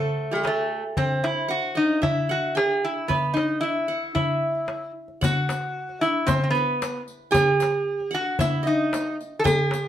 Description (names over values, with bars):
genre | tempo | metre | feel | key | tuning
Arabic maqam ensemble | 113 BPM | 4/4 | straight | E maqam suznak | A4 = 440 Hz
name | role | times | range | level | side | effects
metal-body resonator slide guitar | melody | 0.0-9.9 s | G#3-50c to A4 | -23 LUFS | equal | none
qanun | second line | 0.0-9.9 s | F#4 to G#5-50c | -31 LUFS | right 4 dB | none
darbuka | percussion | 0.4-9.8 s | none | -27 LUFS | left 2 dB | none
riq | percussion | 5.2-9.8 s | none | -34 LUFS | left 4 dB | none
room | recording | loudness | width
wet studio reverb, RT60 0.6 s | band playing live in one room | -21 LUFS | side -11 dB against mid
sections
0.0-5.2 A section; 5.2-9.9 B section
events
none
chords
none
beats
0.44 | 0.97 1.50 2.04 2.57 | 3.10 3.63 4.16 4.69 | 5.22 5.75 6.28 6.81 | 7.34 7.87 8.39 8.92 | 9.45